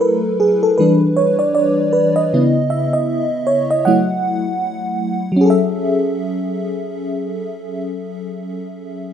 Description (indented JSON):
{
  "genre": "R&B",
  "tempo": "78 BPM",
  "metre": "4/4",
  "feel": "swing 60% on 16ths",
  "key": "F# dorian",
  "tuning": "A4 = 440 Hz",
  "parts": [
    { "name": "FM electric piano with soft pad layer", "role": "solo", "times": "0.0-9.1 s", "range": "C#3 to F#5", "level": "-15 LUFS", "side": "equal", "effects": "chorus, tremolo" }
  ],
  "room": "light reverb",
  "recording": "rough home demo mix",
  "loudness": "-14 LUFS",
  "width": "side -8 dB against mid",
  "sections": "0.0-5.4 A section; 5.4-8.5 B section",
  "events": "FM electric piano solo 0.0-5.4",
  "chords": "0.0 F#m7; 0.8 Em7; 2.3 C#m7; 3.9 F#m7; 5.4 F#m9"
}